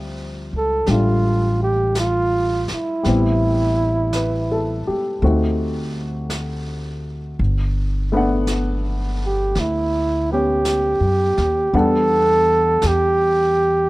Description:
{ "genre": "jazz ballad", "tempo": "55 BPM", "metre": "4/4", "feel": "swing 69% on 8ths", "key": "unclear", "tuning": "A4 = 440 Hz", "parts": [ { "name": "warm baby grand piano", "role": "accompaniment", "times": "0.0-13.9 s", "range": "F3 to F#5", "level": "-24 LUFS", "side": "left 2 dB", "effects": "none" }, { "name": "upright bass", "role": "bass", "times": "0.0-13.9 s", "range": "G1 to F#2", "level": "-22 LUFS", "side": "equal", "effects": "none" }, { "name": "breathy flugelhorn", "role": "melody", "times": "0.6-13.9 s", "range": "E4 to A4", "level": "-18 LUFS", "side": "right 1 dB", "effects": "none" }, { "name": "vintage brush drum kit", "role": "drums", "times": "0.9-13.9 s", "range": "brushed snare drum, hi-hat, snare drum", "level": "-34 LUFS", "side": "equal", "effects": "none" } ], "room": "studio reverb", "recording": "dry, close 1970s-style studio recording", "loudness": "-17 LUFS", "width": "side -19 dB against mid", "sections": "0.0-13.9 A section", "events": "none", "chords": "0.0 Dm11; 3.0 Am9; 5.2 D7b9; 7.4 Gmaj9; 11.7 Em7" }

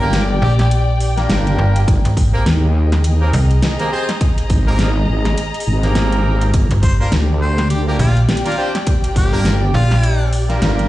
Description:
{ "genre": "glitch hop", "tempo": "103 BPM", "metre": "4/4", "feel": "swing 59% on 16ths", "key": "G phrygian", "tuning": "A4 = 440 Hz", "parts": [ { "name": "clear harmonica", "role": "melody", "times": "0.0-0.7, 6.8-10.3 s", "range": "F4 to C5", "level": "-25 LUFS", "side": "equal", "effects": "tape echo" }, { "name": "brilliant horn section", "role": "stabs", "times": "0.0-10.9 s", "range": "Bb3 to C5", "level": "-24 LUFS", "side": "right 1 dB", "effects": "sidechain pumping, tape echo" }, { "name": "wobble bass", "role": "bass", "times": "0.0-10.9 s", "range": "G1 to Eb2", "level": "-15 LUFS", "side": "equal", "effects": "chorus, overdrive" }, { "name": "dark chamber string section", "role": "texture", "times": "0.0-10.9 s", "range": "G4 to Bb5", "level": "-25 LUFS", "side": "left 2 dB", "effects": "sidechain pumping" }, { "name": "pop drum kit", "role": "drums", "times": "0.1-10.9 s", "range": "hi-hat, snare drum", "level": "-22 LUFS", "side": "equal", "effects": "studio reverb" }, { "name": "slap-like FM bass", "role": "bass", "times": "0.4-10.6 s", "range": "G1 to C2", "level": "-14 LUFS", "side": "equal", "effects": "none" }, { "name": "electronic kick drum", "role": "drums", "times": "1.9-9.3 s", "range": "none", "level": "-16 LUFS", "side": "equal", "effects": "studio reverb" } ], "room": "small room ambience", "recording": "played on a big sound system in a bare room, large studio reverb, vinyl crackle, nothing above 10.7 kHz", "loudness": "-13 LUFS", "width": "side -16 dB against mid", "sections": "0.0-10.9 A section", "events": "none", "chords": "0.0 Gm7; 1.9 Abmaj9; 6.5 Gm7" }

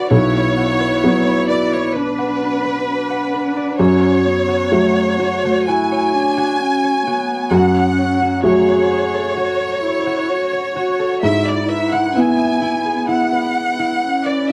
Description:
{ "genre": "neoclassical piano and strings", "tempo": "65 BPM", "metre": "4/4", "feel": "rubato", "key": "unclear", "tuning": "A4 = 439 Hz", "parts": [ { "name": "muted chamber violin section", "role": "melody", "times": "0.0-14.5 s", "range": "B4 to G#5", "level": "-22 LUFS", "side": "equal", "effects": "none" }, { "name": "muted cello", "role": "second line", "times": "0.0-14.5 s", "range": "A3 to G#4", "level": "-24 LUFS", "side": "equal", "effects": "none" }, { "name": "felt-muted upright piano", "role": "accompaniment", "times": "0.0-14.5 s", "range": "B1 to F#4", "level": "-20 LUFS", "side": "equal", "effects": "none" }, { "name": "concert harp", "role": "arpeggios", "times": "0.0-14.5 s", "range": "A3 to B5", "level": "-26 LUFS", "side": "equal", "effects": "slapback echo" } ], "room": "moderate studio reverb, RT60 0.5 s", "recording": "none", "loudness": "-17 LUFS", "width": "mono", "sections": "0.0-14.5 A section", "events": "none", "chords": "0.0 Bmadd9; 3.8 F#m; 11.2 E/G#" }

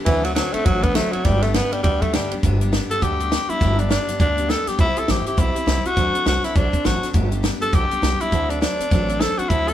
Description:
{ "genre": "rockabilly", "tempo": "204 BPM", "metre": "4/4", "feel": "swing 60% on 8ths", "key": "G major", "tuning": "A4 = 438 Hz", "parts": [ { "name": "raspy tenor saxophone", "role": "melody", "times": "0.0-9.7 s", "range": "E3 to A4", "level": "-22 LUFS", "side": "left 1 dB", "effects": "none" }, { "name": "picked steel-string acoustic guitar", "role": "accompaniment", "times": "0.0-9.7 s", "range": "G2 to A4", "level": "-28 LUFS", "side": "left 1 dB", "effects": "none" }, { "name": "upright bass", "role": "bass", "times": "0.1-9.7 s", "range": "G1 to D2", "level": "-23 LUFS", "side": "equal", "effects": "none" }, { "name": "compact cocktail drum kit", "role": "drums", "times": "0.1-9.7 s", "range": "hi-hat, kick drum, ride cymbal, snare drum", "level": "-22 LUFS", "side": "equal", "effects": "none" } ], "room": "moderate stone room reverb, RT60 1.4 s", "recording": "band playing live in one room", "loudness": "-17 LUFS", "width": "side -11 dB against mid", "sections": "0.0-2.4 A section; 2.4-9.7 B section", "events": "none", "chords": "0.1 D7; 1.2 G; 4.8 C; 6.0 D7; 7.1 G; 8.3 D7" }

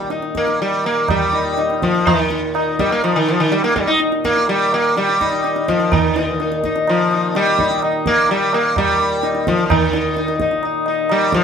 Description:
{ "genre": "indian classical, Hindustani", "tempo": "126 BPM", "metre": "4/4", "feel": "straight", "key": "Eb raga hamsadhwani", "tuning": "A4 = 440 Hz", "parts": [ { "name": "sitar", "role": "melody", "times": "0.0-11.4 s", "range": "Eb3 to Eb4", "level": "-16 LUFS", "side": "left 1 dB", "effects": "none" }, { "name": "hand-pumped harmonium", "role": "drone", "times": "0.0-11.4 s", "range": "Eb2 to Bb2", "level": "-28 LUFS", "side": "equal", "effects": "none" }, { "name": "tabla", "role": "percussion", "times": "0.1-11.4 s", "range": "none", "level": "-23 LUFS", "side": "right 4 dB", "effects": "none" } ], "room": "wet studio reverb, RT60 0.8 s", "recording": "band playing live in one room", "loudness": "-15 LUFS", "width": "side -7 dB against mid", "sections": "0.0-11.4 A section", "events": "speeding up 0.0-11.4", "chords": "none" }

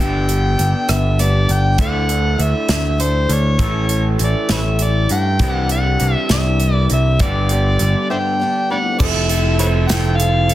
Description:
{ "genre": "folk rock and heartland rock", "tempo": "67 BPM (dotted quarters)", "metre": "6/8", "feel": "straight", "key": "unclear", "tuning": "A4 = 435 Hz", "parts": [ { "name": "overdriven harmonica", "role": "melody", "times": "0.0-10.5 s", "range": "B4 to G5", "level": "-21 LUFS", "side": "equal", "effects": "slapback echo, plate reverb" }, { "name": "picked swing-style acoustic guitar", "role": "accompaniment", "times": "0.0-10.5 s", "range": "G2 to A4", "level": "-27 LUFS", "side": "left 3 dB", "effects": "plate reverb" }, { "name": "electric guitar through a small old amp", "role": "riff", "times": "0.0-10.5 s", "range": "G2 to A4", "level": "-23 LUFS", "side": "right 2 dB", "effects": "spring reverb" }, { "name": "picked electric bass", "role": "bass", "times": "0.0-10.5 s", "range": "F1 to G2", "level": "-16 LUFS", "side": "equal", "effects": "none" }, { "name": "natural country drum kit", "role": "drums", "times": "0.3-10.5 s", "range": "crash cymbal, hi-hat, kick drum, rim click, snare drum", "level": "-20 LUFS", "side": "right 1 dB", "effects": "none" }, { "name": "mellow tonewheel organ", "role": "sustained chords", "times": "8.7-10.5 s", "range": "A3 to D5", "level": "-32 LUFS", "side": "equal", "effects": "none" }, { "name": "clear upright piano", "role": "accompaniment", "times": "9.0-10.5 s", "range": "A4 to C5", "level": "-39 LUFS", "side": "right 3 dB", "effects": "none" }, { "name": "egg shaker", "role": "percussion", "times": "9.0-10.3 s", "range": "none", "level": "-36 LUFS", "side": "right 5 dB", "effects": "none" } ], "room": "light reverb", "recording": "dense, heavily limited modern master", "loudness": "-14 LUFS", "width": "side -14 dB against mid", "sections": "0.0-9.0 A section; 9.0-10.5 B section", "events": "break 8.1-9.0", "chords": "0.0 G; 1.8 Dsus2; 3.6 A; 5.4 Cadd9; 7.2 G; 9.0 Fmaj7" }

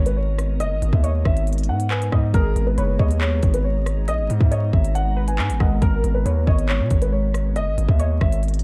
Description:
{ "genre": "hip hop, drill", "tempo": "138 BPM", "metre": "4/4", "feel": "half-time", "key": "G# minor", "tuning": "A4 = 440 Hz", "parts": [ { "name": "dark concert grand piano", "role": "melody", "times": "0.0-8.4 s", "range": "A#4 to G#5", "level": "-30 LUFS", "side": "equal", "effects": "low-pass filter" }, { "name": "glassy FM pad", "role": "sustained chords", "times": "0.0-8.6 s", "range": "G#3 to A#5", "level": "-35 LUFS", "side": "equal", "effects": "ensemble chorus, built-in reverb" }, { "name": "distorted 808-style bass", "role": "bass", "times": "0.0-8.6 s", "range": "F#1 to B2", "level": "-23 LUFS", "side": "equal", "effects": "distortion" }, { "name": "drill drum kit", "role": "drums", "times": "0.1-8.6 s", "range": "handclaps, hi-hat, kick drum, rim click", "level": "-22 LUFS", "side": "equal", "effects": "none" }, { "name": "warbly dusty pluck", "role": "second line", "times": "0.6-8.6 s", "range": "A#4 to D#5", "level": "-36 LUFS", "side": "equal", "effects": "chorus, tape echo" }, { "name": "warbly lo-fi synth keys", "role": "accompaniment", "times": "2.3-8.6 s", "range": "G#3 to A#4", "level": "-34 LUFS", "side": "equal", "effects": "chorus, low-pass filter" } ], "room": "little or no reverb", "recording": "dark, warm production, vinyl crackle", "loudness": "-20 LUFS", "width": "mono", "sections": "0.0-8.6 A section", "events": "none", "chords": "0.0 G#madd9" }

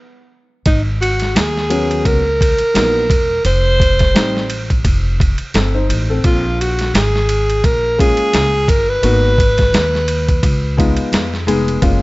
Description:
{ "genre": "hip hop, jazz-hop", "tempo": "86 BPM", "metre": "4/4", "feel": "swing 58% on 16ths", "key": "unclear", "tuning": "A4 = 440 Hz", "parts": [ { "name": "breathy alto saxophone", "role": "melody", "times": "0.7-11.0 s", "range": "D#4 to C5", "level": "-16 LUFS", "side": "equal", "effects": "none" }, { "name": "upright bass", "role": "bass", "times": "0.7-12.0 s", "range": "E1 to E#2", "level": "-18 LUFS", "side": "equal", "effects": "none" }, { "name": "boom bap sampler-style drum kit", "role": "drums", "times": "0.7-12.0 s", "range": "hi-hat, kick drum, ride cymbal, snare drum", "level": "-17 LUFS", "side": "equal", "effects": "none" }, { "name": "dark concert grand piano", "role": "accompaniment", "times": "1.7-12.0 s", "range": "F#3 to C5", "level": "-19 LUFS", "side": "left 2 dB", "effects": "none" } ], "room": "small room ambience", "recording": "nothing above 7.8 kHz", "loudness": "-12 LUFS", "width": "side -21 dB against mid", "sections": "0.7-11.8 A section", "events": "stop 0.0-0.7", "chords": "0.0 N.C.; 0.7 G#m11; 3.5 F7; 6.2 A#m7; 9.0 G#m7; 10.4 C#7" }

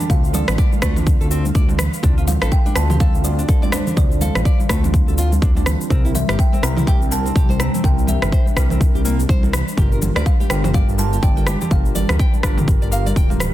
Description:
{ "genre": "afro house", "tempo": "124 BPM", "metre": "4/4", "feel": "swing 59% on 16ths", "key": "D minor", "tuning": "A4 = 440 Hz", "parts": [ { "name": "kalimba", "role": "melody", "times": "0.0-12.4 s", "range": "C5 to Bb5", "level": "-29 LUFS", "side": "equal", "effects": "ping-pong delay" }, { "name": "ethereal airy pad", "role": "sustained chords", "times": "0.0-13.5 s", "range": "C3 to A5", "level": "-28 LUFS", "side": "left 3 dB", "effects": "ensemble chorus, built-in reverb, sidechain pumping" }, { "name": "nylon-string guitar", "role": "arpeggios", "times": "0.0-13.3 s", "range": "G3 to G5", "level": "-30 LUFS", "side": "equal", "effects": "sidechain pumping, ping-pong delay" }, { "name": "house drum kit", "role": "drums", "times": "0.0-13.5 s", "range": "rim click, shaker, toms", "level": "-25 LUFS", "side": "left 1 dB", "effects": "none" }, { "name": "tine electric piano", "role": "stabs", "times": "0.1-13.5 s", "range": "C4 to Bb4", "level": "-30 LUFS", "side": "right 4 dB", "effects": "medium stereo tremolo, sidechain pumping, ping-pong delay" }, { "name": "dark detuned saw bass", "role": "bass", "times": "0.1-13.5 s", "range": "D1 to D2", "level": "-20 LUFS", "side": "equal", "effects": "sidechain pumping" }, { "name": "electronic kick drum", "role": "drums", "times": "0.1-13.3 s", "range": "none", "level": "-16 LUFS", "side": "equal", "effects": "none" }, { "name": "congas", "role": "percussion", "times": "0.3-13.5 s", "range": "none", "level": "-26 LUFS", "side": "right 3 dB", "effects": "none" } ], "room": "digital ambience", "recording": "dense, heavily limited modern master", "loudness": "-14 LUFS", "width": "side -14 dB against mid", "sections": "0.0-13.5 A section", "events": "none", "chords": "0.0 Dm7; 5.9 C7; 9.8 Gm7" }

